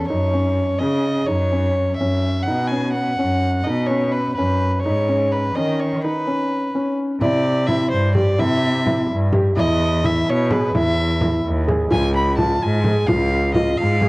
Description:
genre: contemporary instrumental, chamber music in an uneven meter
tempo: 254 BPM (eighths)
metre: 5/8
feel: straight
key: unclear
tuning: A4 = 440 Hz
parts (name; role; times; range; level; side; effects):
- clear violin; melody; 0.0-14.1 s; B4 to B5; -23 LUFS; equal; none
- felt-muted upright piano; arpeggios; 0.0-14.1 s; C#4 to G#4; -22 LUFS; equal; tape echo
- rich cello; bass; 0.0-14.1 s; C#2 to D#3; -20 LUFS; equal; transformer saturation
- frame drum; percussion; 7.2-14.1 s; none; -24 LUFS; equal; none
room: moderate spring reverb, RT60 2.8 s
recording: worn, warbling old tape, cassette tape, warbly pitch drift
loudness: -17 LUFS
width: side -22 dB against mid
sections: 0.0-7.2 A section; 7.2-14.1 B section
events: break 6.0-7.2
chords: 0.1 F#5; 2.5 B; 4.8 G#m; 7.2 Cadd9; 9.6 E; 11.9 C#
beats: | 0.09 0.33 0.57 0.81 1.04 | 1.28 1.52 1.76 2.00 2.23 | 2.47 2.71 2.94 3.18 3.42 | 3.66 3.89 4.13 4.37 4.61 | 4.84 5.08 5.32 5.55 5.79 | 6.03 6.26 6.50 6.74 6.97 | 7.21 7.44 7.68 7.92 8.15 | 8.39 8.62 8.86 9.09 9.33 | 9.56 9.80 10.03 10.27 10.50 | 10.74 10.97 11.21 11.44 11.68 | 11.91 12.15 12.38 12.62 12.85 | 13.09 13.32 13.55 13.79 14.02

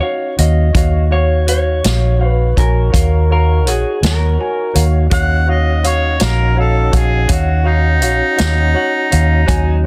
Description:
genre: slow blues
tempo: 55 BPM (dotted quarters)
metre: 12/8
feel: straight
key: Eb minor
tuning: A4 = 440 Hz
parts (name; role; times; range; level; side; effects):
- electric guitar through a small old amp; melody; 0.0-4.8 s; Ab4 to Eb5; -22 LUFS; equal; none
- warm grand piano; accompaniment; 0.0-9.9 s; Gb4 to Ab5; -24 LUFS; equal; none
- tonewheel organ; sustained chords; 0.0-9.9 s; Gb3 to Db5; -29 LUFS; equal; slow rotary speaker, overdrive
- vintage muted fingered electric bass; bass; 0.4-9.9 s; Bb1 to Eb2; -16 LUFS; equal; none
- vintage drum kit; drums; 0.4-9.7 s; hi-hat, kick drum, snare drum; -19 LUFS; equal; none
- mellow harmonica; second line; 5.1-9.8 s; Eb4 to Gb5; -20 LUFS; equal; overdrive
room: light reverb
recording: dense, heavily limited modern master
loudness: -14 LUFS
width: mono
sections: 0.0-9.9 A section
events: none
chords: 0.0 Ebm7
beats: | 0.75 1.84 2.93 4.02 | 5.12 6.21 7.30 8.40 | 9.49

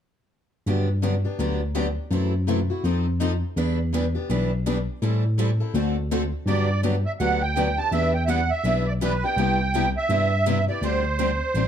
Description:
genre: acoustic string swing (jazz manouche)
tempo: 165 BPM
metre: 4/4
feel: swing 60% on 8ths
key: G major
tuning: A4 = 440 Hz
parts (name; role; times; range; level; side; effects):
- picked steel-string acoustic guitar; accompaniment; 0.7-11.7 s; C3 to A4; -28 LUFS; left 5 dB; none
- picked steel-string acoustic guitar; accompaniment; 0.7-11.7 s; C3 to B4; -32 LUFS; right 5 dB; none
- overdriven tine electric piano; bass; 0.7-11.7 s; A1 to A2; -24 LUFS; equal; none
- musette accordion; melody; 6.5-11.7 s; B4 to A5; -24 LUFS; right 3 dB; plate reverb
room: light reverb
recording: dark, warm production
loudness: -21 LUFS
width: side -9 dB against mid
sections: 0.7-6.5 A section; 6.5-11.7 B section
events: none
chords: 0.7 Gmaj7; 2.1 F#m7b5; 2.8 F7; 3.6 Em7; 5.0 Am7; 5.7 D7; 6.5 Gmaj7; 7.9 Em7; 9.4 Cmaj7; 10.8 D7sus4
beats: | 0.66 1.03 1.39 1.75 | 2.12 2.48 2.84 3.20 | 3.57 3.93 4.29 4.66 | 5.02 5.38 5.74 6.11 | 6.47 6.83 7.19 7.56 | 7.92 8.28 8.64 9.01 | 9.37 9.73 10.10 10.46 | 10.82 11.19 11.55

